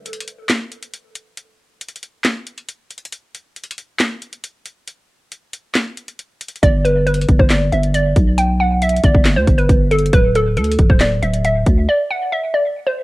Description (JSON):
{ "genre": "hip hop, trap", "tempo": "137 BPM", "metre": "4/4", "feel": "half-time", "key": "unclear", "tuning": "A4 = 437 Hz", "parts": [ { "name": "trap drum kit", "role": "drums", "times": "0.1-11.8 s", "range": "handclaps, hi-hat, kick drum, snare drum", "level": "-16 LUFS", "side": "equal", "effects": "none" }, { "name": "hollow square pluck", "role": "melody", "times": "6.6-13.0 s", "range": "A4 to G5", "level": "-18 LUFS", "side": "equal", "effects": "chorus, low-pass filter, analog delay, plate reverb" }, { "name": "growling 808-style bass", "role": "bass", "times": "6.6-11.9 s", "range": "C1 to D2", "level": "-17 LUFS", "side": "equal", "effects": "none" } ], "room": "light reverb", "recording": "cassette tape", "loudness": "-13 LUFS", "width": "side -20 dB against mid", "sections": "0.0-13.0 A section", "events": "break 0.0-6.6, 11.9-13.0", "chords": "0.0 N.C.; 6.6 G; 10.1 Cadd9 (rootless)" }